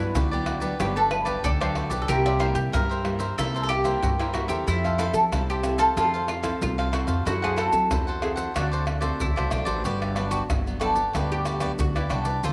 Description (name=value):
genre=samba and choro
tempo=93 BPM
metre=4/4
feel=straight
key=unclear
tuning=A4 = 440 Hz
part: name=oud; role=melody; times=0.0-12.5 s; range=D4 to D5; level=-29 LUFS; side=equal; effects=none
part: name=mandolin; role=second line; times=0.0-9.8 s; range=D4 to B4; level=-33 LUFS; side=equal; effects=none
part: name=nylon-string guitar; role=accompaniment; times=0.0-12.5 s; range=G2 to B4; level=-36 LUFS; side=equal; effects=none
part: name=upright bass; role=bass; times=0.0-12.5 s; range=G1 to F#3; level=-31 LUFS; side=equal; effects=none
part: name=cavaquinho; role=accompaniment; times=0.1-12.5 s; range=E4 to F#5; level=-34 LUFS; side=equal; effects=none
part: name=maracas, surdo, pandeiro and tamborim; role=percussion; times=0.2-12.5 s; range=none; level=-32 LUFS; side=equal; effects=none
room=moderate plate reverb, RT60 3.4 s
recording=none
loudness=-25 LUFS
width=mono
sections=0.0-9.9 A section; 9.9-12.5 B section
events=none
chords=0.0 Gmaj7; 2.1 C7; 4.7 Fmaj7; 7.3 F#m7b5; 8.6 D7; 9.9 Gmaj7